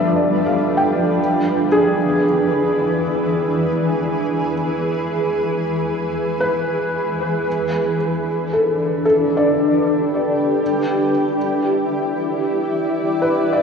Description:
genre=ambient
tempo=58 BPM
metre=3/4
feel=straight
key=unclear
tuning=A4 = 440 Hz
part: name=granular cloud pad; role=sustained chords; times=0.0-13.6 s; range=E3 to D5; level=-18 LUFS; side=equal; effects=built-in reverb, shimmer reverb
part: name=felt-muted upright piano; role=arpeggios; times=0.0-13.6 s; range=G#4 to G5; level=-21 LUFS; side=left 1 dB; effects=diffuse ambient delay, shimmer reverb
room=wet concert hall reverb, RT60 2.5 s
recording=worn, warbling old tape, cassette tape, warbly pitch drift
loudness=-16 LUFS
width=side -6 dB against mid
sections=0.0-7.5 A section; 7.5-13.6 B section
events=filter sweep on ambient pad 0.0-7.5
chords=0.0 G7; 1.2 E; 7.5 G; 10.6 Em7

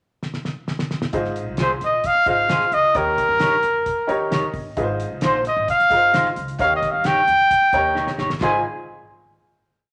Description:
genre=uptempo 1960s-style soul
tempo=132 BPM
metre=4/4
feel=straight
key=Ab major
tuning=A4 = 440 Hz
part: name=cloth-damped thuddy drum kit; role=drums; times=0.2-8.5 s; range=crash cymbal, hi-hat, kick drum, snare drum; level=-31 LUFS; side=equal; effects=none
part: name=clear upright piano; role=accompaniment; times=1.1-8.6 s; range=Ab1 to Bb5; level=-28 LUFS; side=equal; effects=none
part: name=upright bass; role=bass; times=1.1-8.6 s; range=G1 to G2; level=-36 LUFS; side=equal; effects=none
part: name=mellow trumpet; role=melody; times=1.6-8.6 s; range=Bb4 to Ab5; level=-20 LUFS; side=equal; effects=none
part: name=electric guitar through a small old amp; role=stabs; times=1.6-8.6 s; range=Eb4 to Db5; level=-29 LUFS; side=equal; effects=none
room=wet large studio reverb, RT60 1.2 s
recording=none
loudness=-20 LUFS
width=mono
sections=0.0-1.1 pickup bar; 1.1-8.4 verse; 8.4-9.9 final chord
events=drum fill 0.2-1.1, 8.0-8.4; upright piano fill 3.9-4.8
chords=0.0 N.C.; 1.1 Ab6; 2.9 Eb7; 4.8 Ab6; 6.6 Eb7; 8.4 Ab6

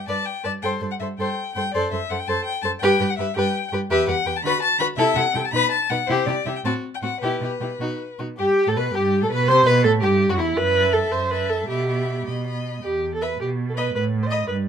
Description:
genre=quick classical-period movement for string quartet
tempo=109 BPM (dotted quarters)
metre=6/8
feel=rubato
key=G major, E minor from 3.9 s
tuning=A4 = 439 Hz
part: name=rich violin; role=melody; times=0.0-14.4 s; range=E4 to B5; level=-26 LUFS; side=left 6 dB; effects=none
part: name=rich violin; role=second line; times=0.1-14.4 s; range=E4 to E5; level=-26 LUFS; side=left 4 dB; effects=none
part: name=rich viola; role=accompaniment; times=0.1-14.6 s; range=C4 to D#5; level=-23 LUFS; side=right 2 dB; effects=none
part: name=warm cello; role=bass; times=0.1-14.7 s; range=E2 to D3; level=-26 LUFS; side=right 3 dB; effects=none
room=light reverb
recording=minimal, uncompressed stereo recording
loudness=-19 LUFS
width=side -8 dB against mid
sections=0.0-8.4 A section; 8.4-14.7 B section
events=none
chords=0.0 G; 0.6 Am7/G; 1.7 F#dim; 2.8 G; 3.9 Em; 4.4 Bm; 5.0 Am; 5.5 B; 6.1 C; 6.6 F#dim; 7.2 Em; 7.8 B; 8.4 Gadd9; 9.5 C; 10.6 F#m7b5; 11.7 Em/B; 12.3 B; 12.8 Em; 13.4 N.C.; 13.9 B7/A

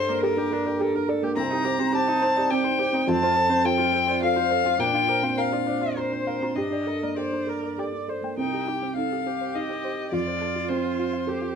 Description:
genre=neoclassical piano and strings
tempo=104 BPM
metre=3/4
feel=rubato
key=C dorian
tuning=A4 = 444 Hz
part: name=warm violin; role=melody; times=0.0-11.6 s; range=Bb4 to Bb5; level=-25 LUFS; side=left 4 dB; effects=none
part: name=felt-muted upright piano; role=accompaniment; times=0.0-11.6 s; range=C2 to D5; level=-27 LUFS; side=right 2 dB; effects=none
part: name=warm viola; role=accompaniment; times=0.0-11.6 s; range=C4 to D5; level=-32 LUFS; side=right 4 dB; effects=none
part: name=soft round pluck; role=arpeggios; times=0.0-11.5 s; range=C4 to Bb5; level=-32 LUFS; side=right 1 dB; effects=chorus
room=moderate studio reverb, RT60 0.8 s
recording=band playing live in one room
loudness=-22 LUFS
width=side -7 dB against mid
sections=0.0-8.4 A section; 8.4-11.6 B section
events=none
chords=0.0 Gmadd9; 1.4 Cm; 3.1 F; 4.8 Bbadd9; 6.6 Gmadd9; 8.4 Cm; 10.1 F

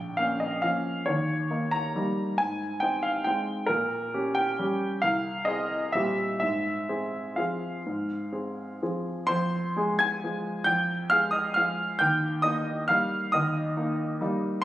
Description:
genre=classical, piano waltz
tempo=121-145 BPM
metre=3/4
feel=rubato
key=F minor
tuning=A4 = 440 Hz
part: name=clear grand piano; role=solo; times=0.0-14.6 s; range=Bb1 to Ab6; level=-25 LUFS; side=equal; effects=none
room=moderate scoring stage reverb, RT60 1.8 s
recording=recorded on a phone in the room, studio ambience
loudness=-25 LUFS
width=side -14 dB against mid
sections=0.0-9.3 A section; 9.3-14.6 A section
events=none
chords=0.0 Bbm; 1.1 Eb7; 2.4 Ab; 3.7 Gdim/Bb; 5.0 Fm/C; 5.9 C7/Bb; 6.4 Fm/Ab; 9.3 Fm; 12.0 Eb

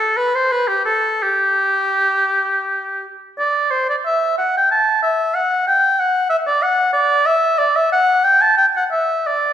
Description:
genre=classical, baroque-style fantasia for unaccompanied oboe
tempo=82-96 BPM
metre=3/4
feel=rubato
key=G major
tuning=A4 = 436 Hz
part: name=clear oboe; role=solo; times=0.0-9.5 s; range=G4 to A5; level=-14 LUFS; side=equal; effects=none
room=wet recital hall reverb, RT60 1.6 s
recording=heard from further back in the room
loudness=-14 LUFS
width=side -10 dB against mid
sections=0.0-3.4 A section; 3.4-9.5 B section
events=none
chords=none

